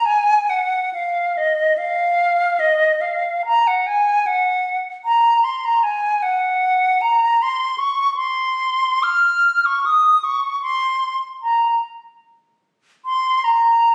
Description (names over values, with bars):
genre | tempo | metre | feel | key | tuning
classical, free, expressive piece for unaccompanied flute | 65-79 BPM | 3/4 | rubato | Bb minor | A4 = 440 Hz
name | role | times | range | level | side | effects
silver concert flute | solo | 0.0-13.9 s | Eb5 to F6 | -18 LUFS | equal | none
room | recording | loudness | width
light reverb | recorded on a phone in the room, studio reverb, compression | -18 LUFS | mono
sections
0.0-13.9 A section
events
none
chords
none